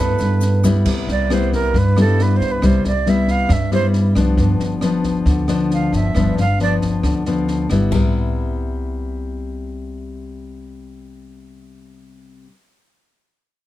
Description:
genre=bossa nova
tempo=136 BPM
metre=4/4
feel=straight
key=C major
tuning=A4 = 442 Hz
part: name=breathy jazz flute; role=melody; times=0.0-6.7 s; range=A4 to F5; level=-22 LUFS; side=right 5 dB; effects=none
part: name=nylon-string guitar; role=accompaniment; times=0.0-12.5 s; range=G2 to A4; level=-20 LUFS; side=left 3 dB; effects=none
part: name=warm grand piano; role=accompaniment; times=0.0-0.9 s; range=none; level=barely audible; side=none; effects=none
part: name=upright bass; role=bass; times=0.0-12.4 s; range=G1 to G2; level=-20 LUFS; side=right 1 dB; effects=none
part: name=open jazz drum kit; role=drums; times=0.2-8.0 s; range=crash cymbal, kick drum, rim click, snare drum, splash cymbal, toms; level=-24 LUFS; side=equal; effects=none
part: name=tube shaker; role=percussion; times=0.2-0.9 s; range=none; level=-35 LUFS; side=left 7 dB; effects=none
room=light reverb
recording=dark, warm production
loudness=-15 LUFS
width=side -14 dB against mid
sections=0.9-7.9 A section; 7.9-11.5 B section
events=flute solo 0.9-7.9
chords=0.0 Cmaj13 (rootless); 0.9 Cmaj7; 4.4 G7; 7.9 Cmaj7

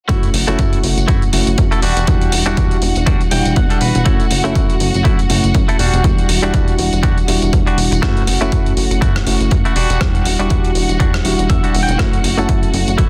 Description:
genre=filtered disco house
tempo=121 BPM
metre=4/4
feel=swing 57% on 16ths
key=unclear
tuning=A4 = 441 Hz
part: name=reed electric piano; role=accompaniment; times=0.1-13.1 s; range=G3 to F#4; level=-22 LUFS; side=equal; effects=phaser, sidechain pumping, low-pass filter
part: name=dark studio violin section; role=sustained chords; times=0.1-13.1 s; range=F#4 to F#5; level=-28 LUFS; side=equal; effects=vintage 12-bit sampler grit, sidechain pumping, low-pass filter
part: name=direct-recorded clean electric guitar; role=riff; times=0.1-13.1 s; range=G3 to G5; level=-25 LUFS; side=equal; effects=sidechain pumping, low-pass filter
part: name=plucky analog bass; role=bass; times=0.1-13.1 s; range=E1 to F#2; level=-20 LUFS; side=equal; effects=sidechain pumping, low-pass filter
part: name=dusty soul sampler-style drum kit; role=drums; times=0.1-13.1 s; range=hi-hat, rim click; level=-25 LUFS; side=equal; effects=sidechain pumping on hats, studio ambience, soft clipping on snare
part: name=electronic kick drum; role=drums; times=0.1-13.1 s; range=none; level=-18 LUFS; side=equal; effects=studio ambience
part: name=tambourine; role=percussion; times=0.1-13.1 s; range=none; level=-36 LUFS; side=equal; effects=none
room=digital ambience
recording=dense, heavily limited modern master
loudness=-15 LUFS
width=mono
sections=0.1-13.1 A section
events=clean electric guitar fill 3.1-4.1, 11.3-12.0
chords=0.1 F#m7; 1.8 Em9; 4.1 F#m7; 5.8 Em9; 8.0 F#m7; 9.8 Em9; 12.0 F#m7

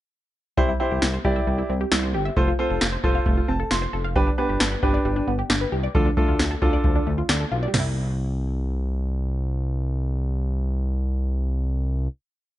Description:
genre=synth-pop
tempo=134 BPM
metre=4/4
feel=straight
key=C major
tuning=A4 = 440 Hz
part: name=clear baby grand piano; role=accompaniment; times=0.6-7.1 s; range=D4 to C6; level=-25 LUFS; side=right 1 dB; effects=none
part: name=analog pluck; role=arpeggios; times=0.6-12.4 s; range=F3 to F5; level=-28 LUFS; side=left 1 dB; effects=chorus, phaser, tape echo
part: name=smooth synth bass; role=bass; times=0.6-12.1 s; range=F1 to D2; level=-25 LUFS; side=equal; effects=none
part: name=electro analog drum machine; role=drums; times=0.6-7.8 s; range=crash cymbal, kick drum, snare drum, toms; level=-23 LUFS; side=equal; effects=gated reverb
room=little or no reverb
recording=nothing above 10.9 kHz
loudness=-21 LUFS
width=side -14 dB against mid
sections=0.6-7.7 verse; 7.7-11.3 final chord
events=grand piano fill 3.3-4.2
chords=0.6 C; 2.4 F; 4.2 G; 5.9 Dm; 7.7 C

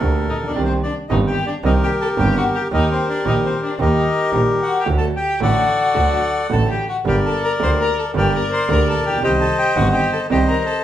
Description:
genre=tango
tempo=111 BPM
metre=4/4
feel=rubato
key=G harmonic minor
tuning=A4 = 442 Hz
part: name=bandoneon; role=melody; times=0.0-10.8 s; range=G4 to C6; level=-20 LUFS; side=left 2 dB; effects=none
part: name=warm grand piano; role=accompaniment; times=0.0-10.5 s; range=G1 to G4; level=-22 LUFS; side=right 3 dB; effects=none
part: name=clear double bass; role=bass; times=0.0-10.5 s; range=G1 to Eb2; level=-21 LUFS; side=right 1 dB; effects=none
part: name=warm violin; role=second line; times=0.3-10.8 s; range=C4 to C5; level=-23 LUFS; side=left 4 dB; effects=none
room=wet large studio reverb, RT60 0.8 s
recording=band playing live in one room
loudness=-16 LUFS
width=side -11 dB against mid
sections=0.0-10.8 A section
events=none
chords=0.0 Gmadd9; 0.6 Cm7; 2.7 Eb; 4.9 D; 7.1 Gm; 9.2 Cm

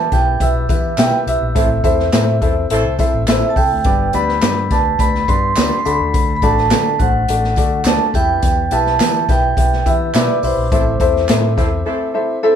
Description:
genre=uptempo 1960s-style soul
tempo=105 BPM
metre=4/4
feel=straight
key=unclear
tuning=A4 = 440 Hz
part: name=vibraphone with soft mallets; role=melody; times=0.0-12.6 s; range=A4 to C6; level=-18 LUFS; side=right 4 dB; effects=none
part: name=glockenspiel with hard plastic mallets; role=second line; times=0.0-12.6 s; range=C6 to C7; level=-30 LUFS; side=right 1 dB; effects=none
part: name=warm upright piano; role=accompaniment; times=0.0-12.6 s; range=G2 to E5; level=-20 LUFS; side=left 4 dB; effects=none
part: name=vintage muted fingered electric bass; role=bass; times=0.0-11.8 s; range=G1 to E3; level=-21 LUFS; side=equal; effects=none
part: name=swinging big-band drum kit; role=drums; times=0.1-11.7 s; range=hi-hat, kick drum, snare drum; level=-18 LUFS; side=equal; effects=none
part: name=tambourine and handclaps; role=percussion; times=0.1-11.4 s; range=none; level=-30 LUFS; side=right 3 dB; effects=none
part: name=warm horn section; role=second line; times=1.6-3.1, 10.7-12.3 s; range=E3 to A4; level=-25 LUFS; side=right 4 dB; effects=none
room=moderate studio reverb, RT60 0.5 s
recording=band playing live in one room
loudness=-13 LUFS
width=side -8 dB against mid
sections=0.0-12.6 A section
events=band accent 1.6-3.9, 10.7-12.6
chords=0.0 Em; 1.6 Am; 3.9 G; 5.9 D; 8.1 Em; 10.7 Am

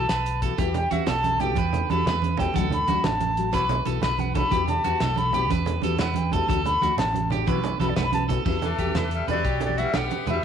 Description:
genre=highlife guitar band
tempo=122 BPM (dotted quarters)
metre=12/8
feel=straight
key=E minor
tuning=A4 = 445 Hz
part: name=silver concert flute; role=melody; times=0.0-10.4 s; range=A4 to B5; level=-26 LUFS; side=left 1 dB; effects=none
part: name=nylon-string guitar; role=accompaniment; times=0.0-10.4 s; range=E3 to F#4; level=-32 LUFS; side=left 12 dB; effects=none
part: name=electric guitar at the edge of break-up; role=arpeggios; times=0.0-10.4 s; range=F#4 to B4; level=-30 LUFS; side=right 8 dB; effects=tape echo
part: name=fingered electric bass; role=bass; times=0.0-10.4 s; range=A1 to E2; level=-28 LUFS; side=left 1 dB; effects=none
part: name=warm soul drum kit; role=drums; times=0.1-10.3 s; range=crash cymbal, hi-hat, kick drum, snare drum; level=-30 LUFS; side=left 1 dB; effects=none
part: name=congas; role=percussion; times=0.6-10.4 s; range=none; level=-28 LUFS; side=right 8 dB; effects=none
part: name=edgy tenor saxophone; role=second line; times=8.6-10.4 s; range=E3 to B3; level=-32 LUFS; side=left 11 dB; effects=none
room=moderate echo chamber reverb, RT60 1.6 s, small room ambience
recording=1960s-style stereo with parts hard left and right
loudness=-21 LUFS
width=side -8 dB against mid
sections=0.0-8.5 A section; 8.5-10.4 B section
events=flute solo 0.0-8.5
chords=0.0 Bsus4; 0.6 Emadd9; 2.6 D; 3.5 Bsus4; 4.5 Emadd9; 6.5 D; 7.5 Bsus4; 8.5 Emadd9

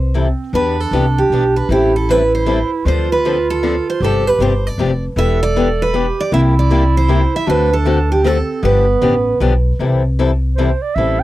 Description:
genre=acoustic string swing (jazz manouche)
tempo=156 BPM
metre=3/4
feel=swing 62% on 8ths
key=C major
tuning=A4 = 440 Hz
part: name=picked steel-string acoustic guitar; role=melody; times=0.0-9.4 s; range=G4 to E5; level=-18 LUFS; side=right 2 dB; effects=none
part: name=upright bass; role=bass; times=0.0-11.2 s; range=E1 to E2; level=-16 LUFS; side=equal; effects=none
part: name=dark clarinet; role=second line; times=0.1-11.2 s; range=B3 to G5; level=-20 LUFS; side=right 5 dB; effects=none
part: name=picked acoustic archtop guitar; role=accompaniment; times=0.1-11.2 s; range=C3 to A4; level=-18 LUFS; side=left 5 dB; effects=none
room=little or no reverb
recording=dry, close 1970s-style studio recording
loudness=-13 LUFS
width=side -15 dB against mid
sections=0.5-9.8 A section; 9.8-11.2 B section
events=clarinet solo 9.8-11.2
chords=0.0 C6; 0.5 Em7; 1.7 Am7; 2.9 Dm7; 4.0 G7sus4; 5.2 Em7; 6.3 C7; 7.5 D7; 8.6 G7; 9.8 C6

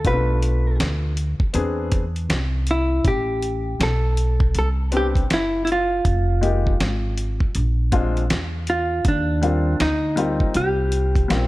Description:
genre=hip hop, jazz-hop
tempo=80 BPM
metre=4/4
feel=swing 62% on 16ths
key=unclear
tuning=A4 = 440 Hz
part: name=vintage hollow-body jazz guitar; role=melody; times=0.0-11.5 s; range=D4 to B4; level=-23 LUFS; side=equal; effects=none
part: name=warm upright piano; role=accompaniment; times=0.0-11.5 s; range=G3 to G#4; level=-26 LUFS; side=left 4 dB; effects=none
part: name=upright bass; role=bass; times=0.0-11.5 s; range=F1 to E2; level=-22 LUFS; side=equal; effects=none
part: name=dusty soul sampler-style drum kit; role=drums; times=0.0-11.5 s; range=hi-hat, kick drum, snare drum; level=-23 LUFS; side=equal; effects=none
room=small room ambience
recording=dark, warm production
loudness=-18 LUFS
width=side -18 dB against mid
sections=0.0-11.5 A section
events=none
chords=0.1 Bm7b5; 1.6 E7b13; 3.1 Am9; 6.1 Fm11; 7.6 Bb7; 9.1 Eb69

